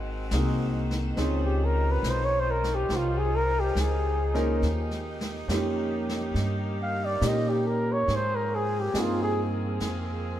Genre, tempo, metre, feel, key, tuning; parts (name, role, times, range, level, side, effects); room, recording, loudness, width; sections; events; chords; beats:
jazz ballad; 70 BPM; 4/4; swing 69% on 8ths; A4 = 440 Hz
mellow saxophone section; sustained chords; 0.0-10.4 s; Eb3 to C5; -36 LUFS; equal
upright bass; bass; 0.0-10.4 s; Ab1 to Bb2; -28 LUFS; equal
warm concert grand piano; accompaniment; 0.3-10.4 s; Bb3 to Bb4; -31 LUFS; right 1 dB
jazz brush drum kit; drums; 0.3-10.4 s; brushed snare drum, hi-hat, snare drum; -38 LUFS; equal
mellow flugelhorn; melody; 1.5-9.4 s; F4 to F5; -28 LUFS; equal
moderate plate reverb, RT60 2.8 s; heard from further back in the room; -24 LUFS; side -12 dB against mid
0.0-10.4 A section
flugelhorn solo 0.0-10.4
0.0 Ab7; 1.2 Dbmaj9; 4.6 Eb7; 8.1 Ab69
0.32 | 1.19 2.05 2.91 3.77 | 4.63 5.49 6.35 7.22 | 8.08 8.94 9.81